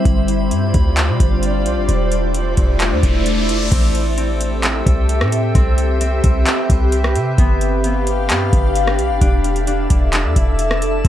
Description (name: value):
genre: hip hop, atmospheric cloud-rap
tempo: 131 BPM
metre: 4/4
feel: half-time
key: A minor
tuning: A4 = 440 Hz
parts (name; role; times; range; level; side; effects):
- ethereal airy pad; sustained chords; 0.0-11.1 s; G3 to F5; -20 LUFS; left 1 dB; ensemble chorus, built-in reverb, sidechain pumping
- drifting glass-harmonics texture; texture; 0.0-11.1 s; E4 to D6; -30 LUFS; equal; chorus, built-in reverb
- clean 808-style bass; bass; 0.1-11.1 s; E1 to C3; -18 LUFS; equal; none
- booming analog drum machine; drums; 0.1-11.1 s; crash cymbal, handclaps, hi-hat, kick drum, rim click; -17 LUFS; equal; overdrive
- riser; sound effects; 2.6-3.7 s; none; -27 LUFS; left 1 dB; none
- concert harp; arpeggios; 3.7-11.1 s; B3 to D4; -27 LUFS; left 5 dB; ping-pong delay
room: moderate studio reverb, RT60 0.6 s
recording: none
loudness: -14 LUFS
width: side -12 dB against mid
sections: 0.0-3.7 A section; 3.7-11.1 B section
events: riser 2.6-3.7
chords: 0.1 G7; 1.9 E7sus4; 3.7 Am7; 5.5 Cmaj7; 7.4 G7; 9.2 E7sus4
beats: | 0.05 0.51 0.97 1.43 | 1.89 2.34 2.80 3.26 | 3.72 4.18 4.63 5.09 | 5.55 6.01 6.47 6.92 | 7.38 7.84 8.30 8.76 | 9.21 9.67 10.13 10.59 | 11.05